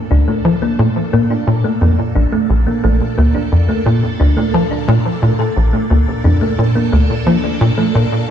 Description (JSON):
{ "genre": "ambient, sequencer-driven space music", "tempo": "88 BPM", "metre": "4/4", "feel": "straight", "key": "Bb major", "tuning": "A4 = 440 Hz", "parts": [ { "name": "phased string machine", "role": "sustained chords", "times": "0.0-8.3 s", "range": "Bb2 to A4", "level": "-24 LUFS", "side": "equal", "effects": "ensemble chorus, phaser" }, { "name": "thumb-piano-like synth pluck", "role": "arpeggios", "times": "0.1-8.0 s", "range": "A3 to A4", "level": "-18 LUFS", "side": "moving between left 2 dB and right 4 dB", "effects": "chorus, auto-pan, analog delay" }, { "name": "tight sequencer bass", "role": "riff", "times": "0.1-8.1 s", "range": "Bb1 to F3", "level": "-13 LUFS", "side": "equal", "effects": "wide subtle chorus, analog delay" } ], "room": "wet scoring stage reverb, RT60 1.8 s", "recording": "dark, warm production", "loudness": "-12 LUFS", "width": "side -9 dB against mid", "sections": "0.0-8.3 A section", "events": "none", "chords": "0.0 Bbmaj7", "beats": "| 0.11 0.79 1.48 2.16 | 2.84 3.52 4.20 4.88 | 5.57 6.25 6.93 7.61 | 8.29" }